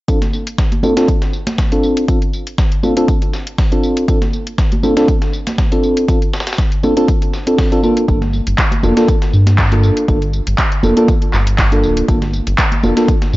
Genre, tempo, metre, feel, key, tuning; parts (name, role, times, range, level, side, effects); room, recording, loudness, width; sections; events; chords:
deep house; 120 BPM; 4/4; swing 54% on 16ths; A4 = 443 Hz
mellow FM electric piano; stabs; 0.1-13.1 s; Bb3 to A4; -15 LUFS; equal; chorus, cassette tape, sidechain pumping, low-pass filter, tape echo
breakbeat sampler-style drum kit; drums; 0.1-13.4 s; hi-hat, snare drum, tambourine; -27 LUFS; equal; sidechain pumping on perc, high-pass filter on perc, high-pass filter on snare, sidechain pumping on hats, high-pass filter on hats
deep house drum kit; drums; 0.1-13.3 s; handclaps, hi-hat; -22 LUFS; equal; overdrive
electronic kick drum; drums; 0.1-13.2 s; -16 LUFS; equal; overdrive
congas; percussion; 0.2-12.9 s; -23 LUFS; right 1 dB
round analog bass; bass; 8.1-13.4 s; D1 to G2; -14 LUFS; equal; sidechain pumping
light reverb; cassette tape, nothing above 7.5 kHz; -12 LUFS; side -18 dB against mid
0.1-13.4 A section
filter sweep on FM electric piano 0.1-13.4
0.1 Dm7; 7.8 Gm9